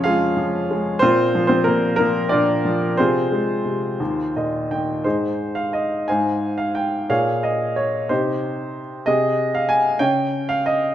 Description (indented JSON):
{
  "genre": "classical, lyrical solo piano",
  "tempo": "59 BPM (dotted quarters)",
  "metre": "6/8",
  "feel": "uneven beats, rubato",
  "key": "Ab major from 5.0 s",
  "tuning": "A4 = 439 Hz",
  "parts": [
    { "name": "clear upright piano", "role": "solo", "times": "0.0-10.9 s", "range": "Eb2 to Ab5", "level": "-18 LUFS", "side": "equal", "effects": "none" }
  ],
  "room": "moderate scoring stage reverb, RT60 1.9 s",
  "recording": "none",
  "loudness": "-18 LUFS",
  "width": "side -11 dB against mid",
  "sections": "0.0-5.0 A section; 5.0-10.9 B section",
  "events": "upright piano fill 4.0-5.0",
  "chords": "0.0 Db/F; 1.0 Bb; 3.0 Fm/C; 4.0 Eb5; 5.0 Ab; 6.1 Fm/Ab; 7.1 Bbm7; 8.1 Cm; 9.1 Ab/C; 10.0 N.C."
}